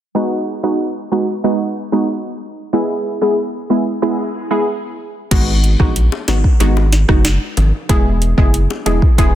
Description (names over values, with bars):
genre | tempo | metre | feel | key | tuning
dancehall | 93 BPM | 4/4 | straight | unclear | A4 = 441 Hz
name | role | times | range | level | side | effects
glassy wavetable pluck | accompaniment | 0.1-9.3 s | G#3 to G#4 | -17 LUFS | right 1 dB | chorus
round analog bass | bass | 5.3-9.3 s | E1 to A#1 | -14 LUFS | equal | none
afro-pop drum kit | drums | 5.3-9.3 s | crash cymbal, hi-hat, kick drum, rim click, snare drum | -14 LUFS | equal | none
bongos | percussion | 5.3-9.3 s | none | -27 LUFS | left 7 dB | none
room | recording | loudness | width
light reverb, digital ambience | dense, heavily limited modern master, low-pass filter | -13 LUFS | side -12 dB against mid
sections
0.2-5.3 A section; 5.3-9.3 B section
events
filter sweep 0.2-5.3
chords
0.2 G#m7; 2.7 E; 5.3 G#m7; 7.9 E